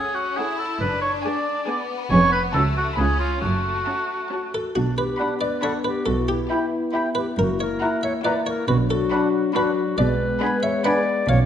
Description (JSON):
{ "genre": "cinematic, playful, whimsical film cue", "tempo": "138 BPM", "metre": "3/4", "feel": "straight", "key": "F# minor, B minor from 4.8 s", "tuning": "A4 = 440 Hz", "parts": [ { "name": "warm studio violin section", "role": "melody", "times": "0.0-11.2 s", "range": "F#5 to B5", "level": "-34 LUFS", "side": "left 2 dB", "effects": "none" }, { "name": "clear studio violin section", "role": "second line", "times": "0.0-11.2 s", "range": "A3 to G#4", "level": "-32 LUFS", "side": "left 4 dB", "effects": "none" }, { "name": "warm oboe", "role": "second line", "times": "0.0-11.0 s", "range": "E#4 to G#5", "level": "-25 LUFS", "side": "right 1 dB", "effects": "none" }, { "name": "rich studio viola section", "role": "accompaniment", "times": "0.0-11.2 s", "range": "B3 to A4", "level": "-32 LUFS", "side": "right 1 dB", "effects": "none" }, { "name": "clear studio double bass section", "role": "bass", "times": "0.8-11.5 s", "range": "E#1 to C#2", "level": "-25 LUFS", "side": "right 2 dB", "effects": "none" }, { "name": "rich studio cello section", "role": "bass", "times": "0.8-11.5 s", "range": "C#2 to B2", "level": "-24 LUFS", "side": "right 2 dB", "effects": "none" }, { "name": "buff-stop harpsichord", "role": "melody", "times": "4.5-11.5 s", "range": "F#4 to F#5", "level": "-27 LUFS", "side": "equal", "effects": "none" }, { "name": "warm clarinet", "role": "second line", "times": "4.5-11.4 s", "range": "D4 to D5", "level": "-26 LUFS", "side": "left 1 dB", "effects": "none" }, { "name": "dark French horn section", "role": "sustained chords", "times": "4.8-11.5 s", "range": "E#3 to E4", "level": "-26 LUFS", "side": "left 5 dB", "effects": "none" }, { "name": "silver concert flute", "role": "second line", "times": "5.2-10.9 s", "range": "A#5 to B5", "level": "-32 LUFS", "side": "equal", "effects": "none" }, { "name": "mellow bassoon", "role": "accompaniment", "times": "5.2-11.0 s", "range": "B3 to E4", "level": "-30 LUFS", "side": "right 1 dB", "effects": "none" } ], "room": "moderate scoring stage reverb, RT60 1.5 s", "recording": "nothing above 10.9 kHz", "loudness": "-20 LUFS", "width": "side -9 dB against mid", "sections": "0.0-4.8 A section; 4.8-11.5 B section", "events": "none", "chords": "0.0 F#m; 0.8 G#m7b5/F#; 2.1 C#/E#; 2.5 F#m/C#; 3.0 C#7; 3.4 F#m; 4.8 Bm; 6.1 Em/B; 7.4 F#7; 8.7 Bm; 10.0 G#dim/B" }